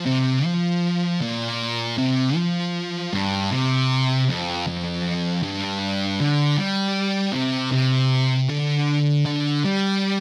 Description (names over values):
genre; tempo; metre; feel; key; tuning
rock; 78 BPM; 4/4; straight; unclear; A4 = 438 Hz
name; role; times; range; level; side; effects
thick fuzz guitar; solo; 0.0-10.2 s; F2 to G3; -22 LUFS; equal; distortion
room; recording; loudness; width
wet club reverb, RT60 0.6 s; none; -22 LUFS; mono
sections
0.0-10.2 A section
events
none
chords
none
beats
| 0.07 0.84 1.61 2.38 | 3.15 3.92 4.68 5.45 | 6.21 6.97 7.74 8.50 | 9.26 10.02